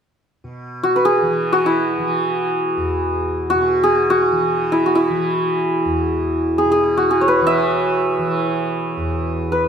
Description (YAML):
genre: indian classical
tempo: free time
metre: none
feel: none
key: E raga bhupali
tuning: A4 = 440 Hz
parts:
  - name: tanpura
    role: drone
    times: 0.4-9.7 s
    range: E2 to E3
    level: -25 LUFS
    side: right 1 dB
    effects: none
  - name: santur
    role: melody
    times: 0.8-9.7 s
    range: E4 to E5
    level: -16 LUFS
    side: equal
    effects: slapback echo
room: moderate recital hall reverb, RT60 1.8 s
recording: close, detailed microphones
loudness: -16 LUFS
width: side -7 dB against mid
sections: 0.4-9.7 A section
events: none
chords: none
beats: free time